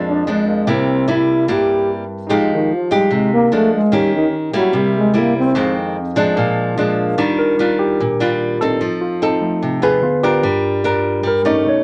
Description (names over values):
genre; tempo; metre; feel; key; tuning
bossa nova; 148 BPM; 4/4; straight; Eb major from 7.2 s; A4 = 443 Hz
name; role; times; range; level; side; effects
barky tine electric piano; accompaniment; 0.0-11.8 s; G2 to F5; -23 LUFS; equal; none
nylon-string guitar; accompaniment; 0.0-11.8 s; F2 to Bb4; -20 LUFS; equal; none
breathy trombone; melody; 0.1-5.7 s; Eb3 to G4; -18 LUFS; equal; none
room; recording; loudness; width
moderate studio ambience, RT60 0.5 s; none; -17 LUFS; mono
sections
0.0-7.2 A section; 7.2-11.8 A section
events
trombone solo 0.0-7.2; tine electric piano solo 7.2-11.8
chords
0.0 Bb7; 0.7 C7; 2.3 Fm9; 3.5 Bb7; 3.9 Eb7; 4.7 C7; 5.6 Fm7; 6.4 Bb7; 7.2 Ebmaj9; 8.8 F7; 10.0 Ddim7; 10.4 Ebmaj9/G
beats
0.27 | 0.68 1.08 1.49 1.90 | 2.30 2.71 3.12 3.52 | 3.93 4.33 4.74 5.15 | 5.55 5.96 6.37 6.77 | 7.18 7.59 7.99 8.40 | 8.81 9.21 9.62 10.03 | 10.43 10.84 11.24 11.65